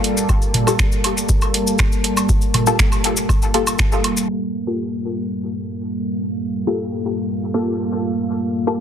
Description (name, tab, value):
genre	dub techno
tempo	120 BPM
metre	4/4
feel	straight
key	G minor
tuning	A4 = 440 Hz
part	deep dark ambient pad	sustained chords	0.0-8.8 s	G3 to A5	-22 LUFS	equal	chorus, built-in reverb, sidechain pumping
part	booming analog drum machine	drums	0.0-4.1 s	finger snaps, hi-hat	-22 LUFS	right 2 dB	low-pass filter on hats, soft clipping on snare, low-pass filter on snare, dub echo
part	cabasa	percussion	0.2-8.8 s	none	-25 LUFS	left 4 dB	none
part	electronic kick drum	drums	0.3-3.9 s	none	-18 LUFS	equal	none
part	electronic woodblock and toms	percussion	0.3-4.1 s	none	-24 LUFS	right 2 dB	sidechain pumping on toms, sidechain pumping on perc, dub echo
part	filtered dub chord stab	stabs	0.7-8.8 s	Bb3 to A4	-23 LUFS	left 2 dB	chorus, phaser, sidechain pumping, dub echo
room	light reverb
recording	dense, heavily limited modern master, low-pass filter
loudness	-17 LUFS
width	side -9 dB against mid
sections	0.0-4.3 A section; 4.3-8.8 B section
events	filter sweep 4.3-8.8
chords	0.0 Gm9